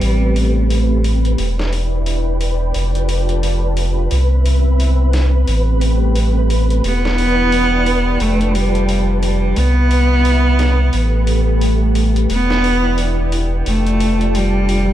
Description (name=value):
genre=trip hop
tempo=88 BPM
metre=4/4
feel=swing 60% on 16ths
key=E phrygian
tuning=A4 = 440 Hz
part: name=clear cello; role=melody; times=0.0-1.1, 6.9-14.9 s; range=G3 to B3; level=-18 LUFS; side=equal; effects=dub echo
part: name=string machine, cellos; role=sustained chords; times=0.0-14.9 s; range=A3 to A5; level=-22 LUFS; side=equal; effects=ensemble chorus
part: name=warm sub bass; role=bass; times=0.0-14.9 s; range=E1 to C2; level=-15 LUFS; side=equal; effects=tube saturation
part: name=trip hop sampler-style drum kit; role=drums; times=0.0-14.9 s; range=hi-hat, snare drum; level=-27 LUFS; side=left 1 dB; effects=high-pass filter on hats, high-pass filter on snare, high-pass filter on room
part: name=flickering grainy texture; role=texture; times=0.0-14.9 s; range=B4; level=-27 LUFS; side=right 2 dB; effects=built-in reverb
room=digital ambience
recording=dark, warm production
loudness=-13 LUFS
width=side -12 dB against mid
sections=0.0-14.9 A section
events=filter sweep on string machine 0.0-14.9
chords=0.0 Am9; 1.4 Em7; 2.7 F69; 4.1 Cmaj7; 5.5 Am9; 6.8 Em7; 8.2 F69; 9.6 Cmaj7; 10.9 Asus2; 12.3 Em7; 13.7 F69